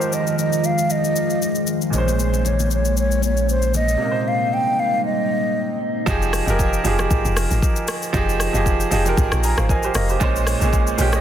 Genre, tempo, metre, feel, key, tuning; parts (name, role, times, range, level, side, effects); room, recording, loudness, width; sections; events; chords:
amapiano; 116 BPM; 4/4; swing 55% on 16ths; F minor; A4 = 440 Hz
mellow hollow concert flute; melody; 0.0-5.8 s; C5 to G5; -22 LUFS; right 1 dB; tape echo
clear grand piano; accompaniment; 0.0-11.2 s; Bb2 to Bb5; -23 LUFS; right 3 dB
deep dark ambient pad; sustained chords; 0.0-6.1 s; Bb2 to F4; -24 LUFS; left 2 dB; chorus, built-in reverb, sidechain pumping
afro-pop drum kit; drums; 0.0-11.2 s; hi-hat, kick drum, rim click, shaker; -23 LUFS; left 1 dB; soft clipping on snare
downlifter; sound effects; 0.0-1.9 s; -39 LUFS; equal
sub bass with octave; bass; 1.9-4.0 s; Bb1; -20 LUFS; equal
congas; percussion; 1.9-3.9 s; -30 LUFS; left 5 dB
deep log drum bass; bass; 6.1-11.2 s; F1 to Bb1; -21 LUFS; equal
light reverb, digital ambience; dense, heavily limited modern master; -17 LUFS; side -10 dB against mid
0.0-6.1 A section; 6.1-11.2 B section
drop 6.1-11.2; grand piano fill 9.2-10.2
0.0 Fm9; 1.9 Bbm9; 4.0 Cm7; 6.1 Fm9; 10.2 Bbm9